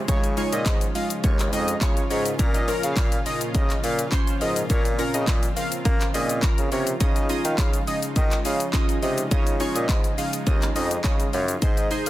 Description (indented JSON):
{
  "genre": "dance-pop",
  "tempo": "104 BPM",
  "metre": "4/4",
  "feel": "straight",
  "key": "Db major",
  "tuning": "A4 = 440 Hz",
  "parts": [
    { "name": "glassy digital keys", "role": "accompaniment", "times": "0.0-12.1 s", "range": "Ab3 to F5", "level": "-29 LUFS", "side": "right 1 dB", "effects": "chorus, sidechain pumping" },
    { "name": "lush unison pad", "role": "sustained chords", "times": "0.0-12.1 s", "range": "Bb2 to Ab4", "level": "-32 LUFS", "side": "equal", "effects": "chorus, sidechain pumping" },
    { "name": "downlifter", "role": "sound effects", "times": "0.0-2.4 s", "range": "none", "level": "barely audible", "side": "none", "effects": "none" },
    { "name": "fat analog lead", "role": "melody", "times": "0.1-12.1 s", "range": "Db5 to F5", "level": "-31 LUFS", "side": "equal", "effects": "chorus, sidechain pumping" },
    { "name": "clear bassoon", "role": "bass", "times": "0.1-12.1 s", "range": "Eb2 to Bb3", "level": "-27 LUFS", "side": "equal", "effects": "sidechain pumping" },
    { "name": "pop drum kit", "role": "drums", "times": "0.1-12.1 s", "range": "handclaps, hi-hat, kick drum, shaker", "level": "-23 LUFS", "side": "equal", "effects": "none" }
  ],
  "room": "little or no reverb",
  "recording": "dense, heavily limited modern master",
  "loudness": "-20 LUFS",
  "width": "side -15 dB against mid",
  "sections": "0.0-12.1 A section",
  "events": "none",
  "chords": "0.0 Dbadd9; 2.4 Bbm; 7.0 Dbadd9"
}